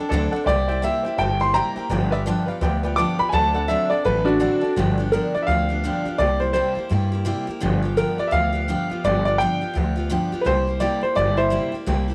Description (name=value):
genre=rockabilly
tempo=168 BPM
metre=4/4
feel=swing 62% on 8ths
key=G mixolydian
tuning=A4 = 439 Hz
part: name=dark upright piano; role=accompaniment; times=0.0-4.7 s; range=A4 to A5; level=-32 LUFS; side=equal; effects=none
part: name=picked steel-string acoustic guitar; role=accompaniment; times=0.0-12.1 s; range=G2 to A4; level=-28 LUFS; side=equal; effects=none
part: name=upright bass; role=bass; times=0.1-12.1 s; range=G1 to G2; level=-26 LUFS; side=equal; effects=none
part: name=clear upright piano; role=melody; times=0.5-11.7 s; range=D4 to D6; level=-24 LUFS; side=equal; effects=none
room=light reverb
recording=none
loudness=-21 LUFS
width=mono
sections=0.0-4.8 A section; 4.8-12.1 A section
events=none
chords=0.5 C7; 1.9 G7; 3.3 D7; 4.8 G7; 6.2 C7; 7.6 G7; 10.4 C7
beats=0.11 | 0.47 0.83 1.18 1.54 | 1.90 2.26 2.61 2.97 | 3.33 3.69 4.04 4.40 | 4.76 5.12 5.47 5.83 | 6.19 6.54 6.90 7.25 | 7.61 7.97 8.32 8.68 | 9.03 9.39 9.74 10.10 | 10.45 10.80 11.16 11.51 | 11.87